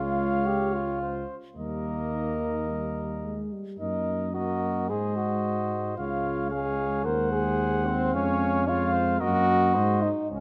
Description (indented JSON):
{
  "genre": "classical, brass quintet",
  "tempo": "110 BPM",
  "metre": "4/4",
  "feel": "straight",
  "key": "Db major from 3.8 s",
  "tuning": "A4 = 440 Hz",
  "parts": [
    { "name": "warm cornet", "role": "melody", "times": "0.0-10.4 s", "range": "Eb5 to Gb5", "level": "-36 LUFS", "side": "equal", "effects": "none" },
    { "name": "clear flugelhorn", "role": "second line", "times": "0.0-10.4 s", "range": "Bb4 to Db5", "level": "-37 LUFS", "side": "equal", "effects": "none" },
    { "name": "clear French horn", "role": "accompaniment", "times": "0.0-10.4 s", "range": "Bb3 to Bb4", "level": "-31 LUFS", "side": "equal", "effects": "none" },
    { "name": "dark euphonium", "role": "accompaniment", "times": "0.0-10.4 s", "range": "Eb3 to Bb3", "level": "-36 LUFS", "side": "equal", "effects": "none" },
    { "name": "mellow tuba", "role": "bass", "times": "0.0-10.4 s", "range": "Db2 to Ab2", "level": "-33 LUFS", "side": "equal", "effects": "none" }
  ],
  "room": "moderate recital hall reverb, RT60 1.4 s",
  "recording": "none",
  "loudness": "-27 LUFS",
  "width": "mono",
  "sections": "0.0-10.4 A section",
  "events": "none",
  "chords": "0.0 Db; 1.6 Eb; 3.8 Ebm/Gb; 4.9 Ab7; 6.0 Db; 7.1 Ab7/Eb; 8.1 Db/F; 9.2 Ebm/Gb; 9.8 Ab7"
}